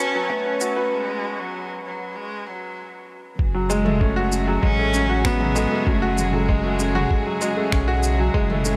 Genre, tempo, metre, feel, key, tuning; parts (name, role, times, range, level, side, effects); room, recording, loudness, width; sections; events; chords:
piano and strings electronica; 97 BPM; 4/4; straight; A4 = 438 Hz
rich cello; melody; 0.0-8.8 s; F#3 to C#4; -29 LUFS; equal
dark chamber string section; sustained chords; 0.0-8.8 s; C#3 to A5; -33 LUFS; equal; sidechain pumping
soft round pluck; arpeggios; 0.0-8.8 s; F#4 to C#5; -36 LUFS; equal
clear grand piano; riff; 0.0-8.8 s; F#3 to B4; -27 LUFS; equal
round analog bass; bass; 0.0-8.8 s; F#1 to B1; -26 LUFS; equal; sidechain pumping, high-pass filter
electronic kick drum; drums; 0.3-8.5 s; -24 LUFS; equal; small room ambience
organic electronic drum kit; drums; 0.6-8.8 s; finger snaps, shaker, toms; -31 LUFS; equal; small room ambience
light reverb, studio reverb; high-pass filter; -22 LUFS; mono
0.0-3.4 A section; 3.4-8.8 B section
build-up 0.0-3.4; break 0.9-3.4; drop 3.4-8.8
0.0 Bsus2; 3.4 F#madd9